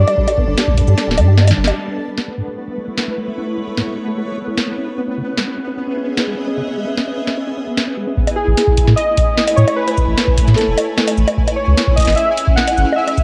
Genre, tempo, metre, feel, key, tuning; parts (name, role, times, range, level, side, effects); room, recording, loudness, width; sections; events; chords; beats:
IDM; 150 BPM; 4/4; straight; A lydian; A4 = 440 Hz
warbly lo-fi synth keys; melody; 0.0-1.3, 8.4-13.2 s; G#4 to F#5; -20 LUFS; equal; chorus, analog delay
granular cloud pad; sustained chords; 0.0-13.2 s; G3 to A5; -27 LUFS; equal; built-in reverb, cassette tape
deep acid bass; arpeggios; 0.0-8.2 s; G2 to G4; -27 LUFS; equal; cassette tape, analog delay
warm sub bass; bass; 0.0-1.7, 8.5-12.8 s; D1 to A2; -14 LUFS; equal
booming analog drum machine; drums; 0.1-13.2 s; bongos, hi-hat, shaker, snare drum; -22 LUFS; equal
electronic kick drum; drums; 0.2-0.9, 8.2-13.2 s; -18 LUFS; equal
pulsing gated texture; texture; 1.8-13.2 s; B3 to G#5; -29 LUFS; equal; chorus, built-in reverb, cassette tape
light reverb, digital ambience; home recording on cassette; -16 LUFS; mono
0.0-1.8 A section; 1.8-8.2 B section; 8.2-13.2 C section
drum fill 1.0-1.8; band accent 1.6
0.0 Gsus2; 1.8 A; 5.0 C#m7; 8.2 Amaj7; 11.4 C#m7
| 0.17 0.57 0.97 1.38 | 1.77 2.17 2.58 2.98 | 3.38 3.77 4.17 4.58 | 4.97 5.38 5.78 6.17 | 6.58 6.97 7.38 7.78 | 8.18 8.57 8.97 9.38 | 9.78 10.18 10.57 10.97 | 11.38 11.78 12.18 12.57 | 12.97